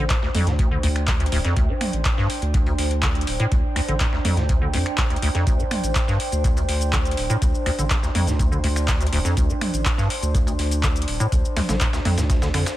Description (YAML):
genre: acid house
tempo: 123 BPM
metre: 4/4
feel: straight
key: D minor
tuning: A4 = 440 Hz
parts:
  - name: acid bass, square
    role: riff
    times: 0.0-12.6 s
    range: D1 to D3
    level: -24 LUFS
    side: equal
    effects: lush chorus, digital delay
  - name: saturated sub bass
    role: bass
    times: 0.0-12.6 s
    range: D1 to F2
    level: -24 LUFS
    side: equal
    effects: sidechain pumping
  - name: warbly tape-like pad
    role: texture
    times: 0.0-12.8 s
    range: D4 to G5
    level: -29 LUFS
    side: right 1 dB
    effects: chorus, built-in reverb, sidechain pumping
  - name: dusty soul sampler-style drum kit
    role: drums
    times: 0.1-12.8 s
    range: hi-hat, snare drum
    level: -36 LUFS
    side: equal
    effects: high-pass filter on hats, high-pass filter on snare
  - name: electro analog drum machine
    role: drums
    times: 0.1-12.8 s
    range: finger snaps, handclaps, hi-hat, shaker, toms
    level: -27 LUFS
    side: equal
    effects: none
  - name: electronic kick drum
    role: drums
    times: 0.1-12.4 s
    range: none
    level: -22 LUFS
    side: equal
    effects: none
room: digital ambience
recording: none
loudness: -19 LUFS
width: side -14 dB against mid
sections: 0.0-12.8 A section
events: none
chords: 0.0 D7(no3)